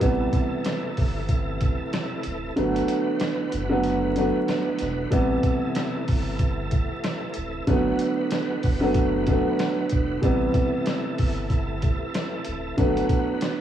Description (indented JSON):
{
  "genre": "hip hop, boom-bap hip-hop",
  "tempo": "94 BPM",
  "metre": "4/4",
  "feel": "swing 58% on 16ths",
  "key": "A dorian",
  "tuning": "A4 = 444 Hz",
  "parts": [
    { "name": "dark upright piano", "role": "accompaniment", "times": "0.0-13.6 s", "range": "C3 to B3", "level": "-24 LUFS", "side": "right 1 dB", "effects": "high-pass filter, low-pass filter, cassette tape" },
    { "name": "bright tonewheel organ", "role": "sustained chords", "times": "0.0-13.6 s", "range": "C3 to B4", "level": "-32 LUFS", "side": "right 2 dB", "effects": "overdrive, chorus vibrato, fast rotary speaker, high-pass filter, low-pass filter, cassette tape" },
    { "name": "soft dub sub bass", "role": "bass", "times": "0.0-13.0 s", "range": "D1 to A1", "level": "-29 LUFS", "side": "equal", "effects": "none" },
    { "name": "boom bap sampler-style drum kit", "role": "drums", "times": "0.0-13.6 s", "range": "hi-hat, kick drum, rim click, snare drum", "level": "-26 LUFS", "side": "equal", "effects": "cassette tape" }
  ],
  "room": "light reverb, digital ambience",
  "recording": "home recording on cassette, vinyl crackle",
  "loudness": "-22 LUFS",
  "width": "side -10 dB against mid",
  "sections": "0.0-13.6 A section",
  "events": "kick muted 2.6-5.1",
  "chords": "0.0 Am7; 2.6 Gmaj7 (rootless); 5.1 Am7; 7.7 Gmaj7 (rootless); 10.2 Am7; 12.8 Gmaj7",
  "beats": "| 0.02 0.66 1.29 1.93 | 2.57 3.21 3.85 4.49 | 5.12 5.76 6.40 7.04 | 7.68 8.31 8.95 9.59 | 10.23 10.87 11.51 12.14 | 12.78 13.42"
}